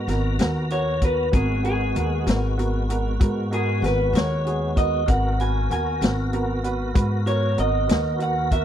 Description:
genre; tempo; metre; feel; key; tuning
slow blues; 64 BPM (dotted quarters); 12/8; straight; G# minor; A4 = 438 Hz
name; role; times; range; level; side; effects
electric guitar through a small old amp; melody; 0.0-8.6 s; G#4 to G#5; -25 LUFS; equal; none
tonewheel organ; sustained chords; 0.0-8.6 s; G#3 to A#5; -31 LUFS; left 1 dB; slow rotary speaker, chorus vibrato
upright bass; bass; 0.0-8.6 s; G#1 to G#2; -24 LUFS; equal; none
clear upright piano; accompaniment; 0.1-8.6 s; B3 to B4; -29 LUFS; right 4 dB; none
vintage drum kit; drums; 0.1-8.6 s; hi-hat, kick drum, snare drum; -22 LUFS; left 1 dB; none
room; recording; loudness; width
little or no reverb; dry, close 1970s-style studio recording; -20 LUFS; side -10 dB against mid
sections
0.0-8.6 A section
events
clean electric guitar solo 0.0-8.6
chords
0.0 G#m7

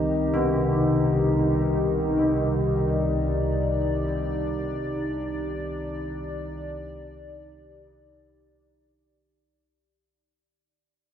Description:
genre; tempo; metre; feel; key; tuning
dark ambient drone; free time; none; none; C harmonic minor; A4 = 439 Hz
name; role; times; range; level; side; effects
dark analog pad; sustained chords; 0.0-9.4 s; Eb4 to Eb5; -27 LUFS; left 1 dB; chorus, phaser
old church bells; arpeggios; 0.0-7.8 s; B2 to B3; -35 LUFS; equal; diffuse ambient delay
analog drone; drone; 0.0-9.6 s; C2 to Eb3; -25 LUFS; equal; chorus
room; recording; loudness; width
wet huge ambient reverb, RT60 8.0 s; none; -23 LUFS; side -9 dB against mid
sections
0.0-9.4 A section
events
fade-out on church bells 0.0-9.4; fade-out 2.8-9.4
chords
0.0 Cm

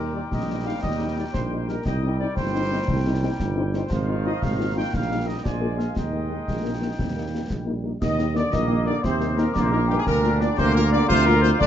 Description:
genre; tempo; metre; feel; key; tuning
military-style march for wind band; 117 BPM (dotted quarters); 6/8; straight; Eb major; A4 = 442 Hz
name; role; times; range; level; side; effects
mellow trumpet section; melody; 0.0-11.7 s; G4 to G5; -30 LUFS; left 1 dB; none
mellow woodwind section; second line; 0.0-11.7 s; Eb4 to Ab5; -32 LUFS; left 2 dB; none
mellow French horn section; accompaniment; 0.0-11.5 s; G3 to Ab4; -29 LUFS; left 4 dB; none
clear trombone section; sustained chords; 0.0-11.7 s; Eb3 to F4; -30 LUFS; right 2 dB; none
mellow tuba; bass; 0.0-11.7 s; G1 to Eb2; -24 LUFS; right 2 dB; none
concert snare drum, concert bass drum and clash cymbals; drums; 0.3-11.7 s; none; -30 LUFS; left 1 dB; none
warm euphonium; second line; 6.5-11.7 s; G2 to C4; -32 LUFS; right 4 dB; none
glockenspiel with rubber mallets; second line; 8.0-11.7 s; G5 to Eb6; -31 LUFS; left 6 dB; none
room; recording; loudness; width
moderate studio reverb, RT60 0.6 s; dark, warm production, nothing above 7.7 kHz; -21 LUFS; side -10 dB against mid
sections
0.0-8.0 A section; 8.0-11.7 B section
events
none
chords
0.0 Eb; 1.9 Cm; 3.9 Fm7/Ab; 4.9 Eb/Bb; 5.4 Bb7; 6.0 Eb; 10.1 Bb/D

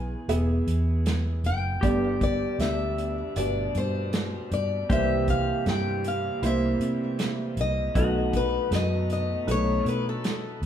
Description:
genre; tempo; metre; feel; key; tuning
acoustic folk-pop ballad; 78 BPM; 4/4; straight; unclear; A4 = 437 Hz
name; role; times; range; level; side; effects
picked steel-string acoustic guitar; melody; 0.0-10.6 s; A4 to G#5; -30 LUFS; left 4 dB; tape echo
pedal steel guitar; second line; 0.0-10.7 s; F#4 to G#4; -34 LUFS; right 1 dB; none
warm upright piano; accompaniment; 0.0-10.7 s; G1 to E5; -30 LUFS; right 2 dB; none
vintage muted fingered electric bass; bass; 0.0-10.7 s; E1 to C3; -28 LUFS; equal; none
loose indie drum kit; drums; 0.3-10.7 s; hi-hat, kick drum, snare drum; -30 LUFS; right 1 dB; none
warm chamber string section; sustained chords; 1.8-10.7 s; B2 to D#4; -37 LUFS; equal; none
room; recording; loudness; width
wet large studio reverb, RT60 0.9 s; heard from further back in the room; -23 LUFS; side -9 dB against mid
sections
0.0-10.7 A section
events
none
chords
0.0 E; 1.8 G; 4.9 C7; 7.9 B7

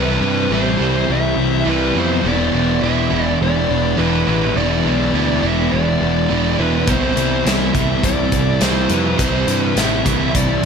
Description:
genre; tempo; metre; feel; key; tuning
rock, shoegaze and dream pop; 104 BPM; 4/4; straight; C major; A4 = 437 Hz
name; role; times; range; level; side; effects
fuzz lead guitar; melody; 0.0-10.7 s; B4 to E5; -22 LUFS; left 1 dB; distortion, ping-pong delay
electric guitar through a small old amp; arpeggios; 0.0-10.7 s; G3 to E4; -26 LUFS; left 1 dB; lush chorus, ping-pong delay
crunchy overdriven guitar; riff; 0.0-10.7 s; E2 to E4; -20 LUFS; right 9 dB; reverse reverb
thick fuzz guitar; riff; 0.0-10.7 s; E2 to C4; -21 LUFS; left 8 dB; distortion, lush chorus
fuzz picked electric bass; bass; 0.0-10.6 s; E1 to G2; -21 LUFS; equal; overdrive
big rock drum kit; drums; 6.9-10.5 s; hi-hat, kick drum, snare drum; -21 LUFS; equal; none
room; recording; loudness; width
wet church reverb, RT60 2.6 s; dreamy mix soaked in reverb; -14 LUFS; side -6 dB against mid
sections
0.0-10.7 A section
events
none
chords
0.0 Cmaj7; 2.2 E7(no3); 6.9 Cmaj7

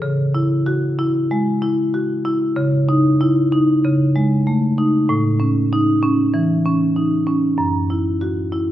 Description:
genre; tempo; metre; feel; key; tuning
classical, contemporary piece for solo marimba; 96 BPM; 4/4; rubato; E major; A4 = 440 Hz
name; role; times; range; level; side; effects
marimba with medium hard mallets; solo; 0.0-8.7 s; F#2 to F#4; -15 LUFS; equal; none
room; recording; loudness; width
wet recital hall reverb, RT60 1.4 s; none; -15 LUFS; side -12 dB against mid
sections
0.0-8.7 A section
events
none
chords
0.0 C#madd11; 2.6 Emaj7/C#; 5.1 A; 7.6 F#5

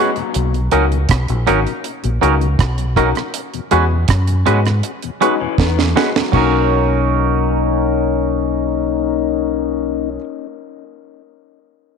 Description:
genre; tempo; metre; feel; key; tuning
lovers rock reggae; 80 BPM; 4/4; straight; B major; A4 = 441 Hz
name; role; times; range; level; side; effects
clear concert grand piano; accompaniment; 0.0-10.2 s; G#3 to F#4; -23 LUFS; left 12 dB; none
mellow tonewheel organ; accompaniment; 0.0-10.1 s; E2 to F#4; -22 LUFS; left 14 dB; slow rotary speaker, tape echo
electric guitar through a small old amp; arpeggios; 0.0-0.5, 5.2-6.5 s; A#2 to D#4; -24 LUFS; left 13 dB; none
twangy electric guitar; stabs; 0.0-10.2 s; F#3 to B4; -20 LUFS; right 11 dB; none
deep reggae drum kit; drums; 0.2-6.5 s; crash cymbal, hi-hat, kick drum, rim click, snare drum; -19 LUFS; right 4 dB; none
deep dub fingered electric bass; bass; 0.4-10.2 s; G#1 to G#2; -18 LUFS; equal; none
room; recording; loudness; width
light reverb, small room ambience; 1960s-style stereo with parts hard left and right; -14 LUFS; side -6 dB against mid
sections
0.0-6.3 A section; 6.3-9.3 B section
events
drum fill 5.6-6.3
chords
0.3 Bmaj9; 3.3 E69; 6.3 Bmaj9

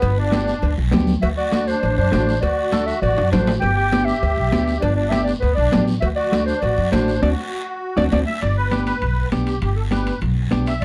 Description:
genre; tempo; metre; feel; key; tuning
latin, cumbia; 200 BPM; 4/4; straight; G major; A4 = 442 Hz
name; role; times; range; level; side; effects
mellow clarinet; melody; 0.0-8.2 s; B4 to G5; -24 LUFS; equal; none
musette accordion; second line; 0.0-10.8 s; B3 to E5; -29 LUFS; equal; none
upright bass; bass; 0.0-10.8 s; G1 to F#2; -23 LUFS; equal; none
congas; percussion; 0.0-10.8 s; none; -27 LUFS; equal; none
cowbell and timbales; percussion; 0.0-10.8 s; none; -32 LUFS; equal; none
guiro; percussion; 0.0-10.8 s; none; -40 LUFS; equal; none
clean electric guitar; accompaniment; 0.3-10.7 s; A3 to A4; -26 LUFS; equal; none
room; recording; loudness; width
moderate small room reverb, RT60 0.6 s; dark, warm production; -19 LUFS; mono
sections
0.0-8.4 A section; 8.4-10.8 B section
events
drum fill 3.2-3.6, 7.5-8.4; band accent 7.2-8.4; accordion solo 8.4-10.8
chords
0.0 G; 1.2 D7; 3.6 G; 6.0 D; 8.4 G

